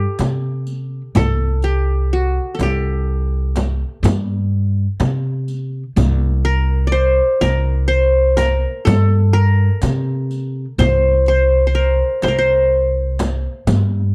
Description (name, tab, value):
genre	Turkish makam ensemble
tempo	125 BPM (eighths)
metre	10/8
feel	straight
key	C makam nikriz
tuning	A4 = 444 Hz
part	qanun	melody	0.0-13.6 s	F#4 to D5	-20 LUFS	equal	none
part	upright bass	bass	0.0-14.1 s	C2 to C3	-19 LUFS	equal	none
part	frame drum	percussion	0.2-13.9 s	none	-22 LUFS	equal	none
part	riq	percussion	0.2-13.9 s	none	-29 LUFS	equal	none
room	little or no reverb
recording	dry, close 1970s-style studio recording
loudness	-17 LUFS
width	mono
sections	0.0-14.1 A section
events	none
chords	none